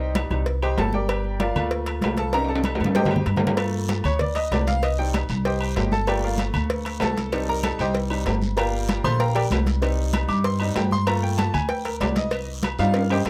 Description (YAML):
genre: latin, salsa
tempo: 192 BPM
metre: 4/4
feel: straight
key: G minor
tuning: A4 = 440 Hz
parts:
  - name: bright upright piano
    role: accompaniment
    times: 0.0-13.2 s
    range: G3 to D6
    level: -28 LUFS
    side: equal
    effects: none
  - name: upright bass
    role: bass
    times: 0.0-13.3 s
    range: G1 to G2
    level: -27 LUFS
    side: equal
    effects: none
  - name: congas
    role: percussion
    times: 0.2-13.3 s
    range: none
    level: -31 LUFS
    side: equal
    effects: none
  - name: cowbell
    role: percussion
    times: 0.2-13.3 s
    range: none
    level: -33 LUFS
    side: equal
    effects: none
  - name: timbales and agogo bells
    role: percussion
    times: 0.2-13.3 s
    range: none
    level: -31 LUFS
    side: equal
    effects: none
  - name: guiro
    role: percussion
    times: 3.6-13.3 s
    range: none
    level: -42 LUFS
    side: equal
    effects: none
room: little or no reverb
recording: close, detailed microphones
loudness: -23 LUFS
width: mono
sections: 0.0-13.3 A section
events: upright piano solo 0.0-13.3; drum fill 2.3-3.6, 12.9-13.3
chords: 0.0 Cm; 1.1 Gm7; 2.3 Cm; 3.6 Gm7; 4.8 Cm; 6.1 Gm7; 7.3 Cm; 8.6 Gm7; 9.8 Cm; 11.1 Gm7; 12.3 Cm